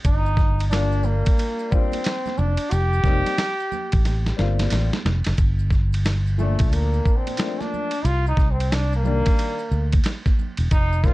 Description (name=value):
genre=hip hop, jazz-hop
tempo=90 BPM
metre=4/4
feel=swing 62% on 16ths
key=G minor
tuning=A4 = 437 Hz
part: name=dusty soul sampler-style drum kit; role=drums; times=0.0-11.1 s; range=hi-hat, kick drum, ride cymbal, snare drum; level=-22 LUFS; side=equal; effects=none
part: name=maracas and congas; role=percussion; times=0.0-11.1 s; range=none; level=-37 LUFS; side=right 12 dB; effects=none
part: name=bright trombone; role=melody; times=0.1-11.1 s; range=A3 to G4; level=-26 LUFS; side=equal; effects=slapback echo
part: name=fingered electric bass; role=bass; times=0.1-11.1 s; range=E1 to D2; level=-21 LUFS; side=equal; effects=none
part: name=clear upright piano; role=accompaniment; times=0.7-11.1 s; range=Bb2 to A4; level=-29 LUFS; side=left 6 dB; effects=none
room=light reverb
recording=dark, warm production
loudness=-19 LUFS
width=side -18 dB against mid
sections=0.0-5.4 A section; 5.4-11.1 B section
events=drum fill 4.1-5.4; trombone solo 5.4-11.1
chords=0.1 F13sus4; 2.7 Fsus4; 5.4 Gm7; 8.1 Cm7